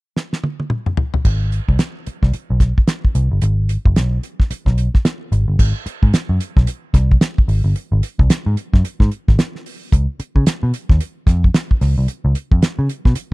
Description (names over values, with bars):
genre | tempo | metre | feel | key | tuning
funk | 111 BPM | 4/4 | swing 60% on 16ths | unclear | A4 = 440 Hz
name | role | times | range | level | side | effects
damped 70s drum kit | drums | 0.2-13.3 s | crash cymbal, hi-hat, kick drum, snare drum, toms | -15 LUFS | equal | none
vintage muted picked electric bass | bass | 1.3-13.2 s | Gb1 to Db3 | -16 LUFS | equal | tube saturation
room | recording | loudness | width
little or no reverb | dry, close 1970s-style studio recording | -15 LUFS | side -24 dB against mid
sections
0.0-1.2 A section; 1.2-5.6 B section; 5.6-13.3 C section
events
drum fill 0.2-1.2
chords
none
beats
0.16 0.71 | 1.25 1.79 2.33 2.88 | 3.42 3.96 4.50 5.05 | 5.59 6.13 6.67 7.21 | 7.75 8.30 8.84 9.38 | 9.92 10.46 11.00 11.54 | 12.08 12.62 13.16